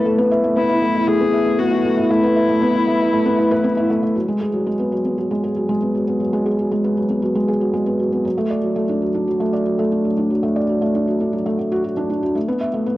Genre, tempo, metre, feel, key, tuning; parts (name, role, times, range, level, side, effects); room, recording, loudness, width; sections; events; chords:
electronica; 117 BPM; 4/4; straight; A4 = 440 Hz
warm viola; melody; 0.0-3.9 s; E4 to G#4; -21 LUFS; left 4 dB; cassette tape, analog delay
felt-muted upright piano; riff; 0.0-13.0 s; F#3 to E5; -17 LUFS; equal; cassette tape
moderate spring reverb, RT60 2.2 s; home recording on cassette; -16 LUFS; side -16 dB against mid
0.0-4.2 A section; 4.2-13.0 B section
0.0 Asus2; 4.2 F#sus24; 8.3 D; 12.4 Asus2